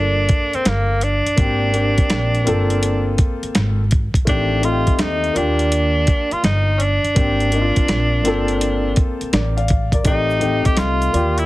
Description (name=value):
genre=hip hop, jazz-hop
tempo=83 BPM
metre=4/4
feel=swing 66% on 16ths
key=G minor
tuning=A4 = 437 Hz
part: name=bright tenor saxophone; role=melody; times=0.0-11.5 s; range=Bb3 to G4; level=-20 LUFS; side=right 1 dB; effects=none
part: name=warm upright piano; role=accompaniment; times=0.0-11.5 s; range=Eb3 to F5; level=-22 LUFS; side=left 2 dB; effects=none
part: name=upright bass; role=bass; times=0.0-11.5 s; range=G1 to Eb2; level=-20 LUFS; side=equal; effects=none
part: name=dusty soul sampler-style drum kit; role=drums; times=0.3-11.5 s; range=hi-hat, kick drum, snare drum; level=-18 LUFS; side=equal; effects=none
part: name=tube shaker and congas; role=percussion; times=10.1-11.5 s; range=none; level=-33 LUFS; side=right 3 dB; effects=none
room=small room reverb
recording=heavily compressed radio sound, multiband compression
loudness=-15 LUFS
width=side -18 dB against mid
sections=0.0-11.5 A section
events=none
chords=0.0 Gm7; 1.4 Abmaj9#11; 2.5 Gm11; 4.3 Am7b5; 5.4 Ebmaj7; 7.2 Abmaj9#11; 8.2 Gm11; 10.1 Am7b5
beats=0.66 | 1.38 2.10 2.83 3.55 | 4.27 5.00 5.72 6.44 | 7.17 7.89 8.61 9.33 | 10.06 10.78